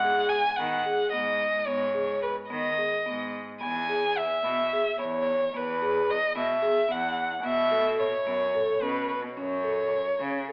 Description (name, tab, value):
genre	contemporary instrumental, chamber music in an uneven meter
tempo	219 BPM (eighths)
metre	7/8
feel	straight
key	unclear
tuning	A4 = 440 Hz
part	dark violin	melody	0.0-10.5 s	B4 to G#5	-26 LUFS	equal	none
part	vibraphone with soft mallets	arpeggios	0.0-10.5 s	B3 to A4	-31 LUFS	equal	none
part	rich cello	bass	0.0-10.4 s	E2 to D#3	-35 LUFS	equal	none
room	wet recital hall reverb, RT60 1.5 s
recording	worn, warbling old tape, cassette tape, warbly pitch drift, telephone sound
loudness	-24 LUFS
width	side -34 dB against mid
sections	0.0-10.5 A section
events	none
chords	0.0 G#m7; 3.6 E; 7.4 B7sus4; 9.4 F#m